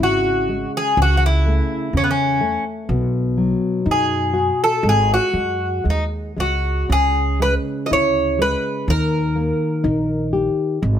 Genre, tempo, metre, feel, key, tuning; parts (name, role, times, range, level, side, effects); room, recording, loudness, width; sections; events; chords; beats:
fado-style ballad; 62 BPM; 2/4; rubato; C# minor; A4 = 440 Hz
Greek bouzouki; melody; 0.0-10.3 s; B3 to D#5; -19 LUFS; equal; plate reverb
nylon-string guitar; accompaniment; 0.0-11.0 s; B2 to G4; -22 LUFS; left 2 dB
upright bass; bass; 0.0-11.0 s; G#1 to F#2; -21 LUFS; right 1 dB
light reverb; -17 LUFS; side -10 dB against mid
0.0-11.0 A section
0.0 C#m; 1.0 A/C#; 2.9 B; 4.8 G#sus4; 6.9 C#m; 8.9 D#
| 0.97 1.94 | 2.90 3.86 | 4.84 5.85 | 6.89 7.91 | 8.88 9.85 | 10.82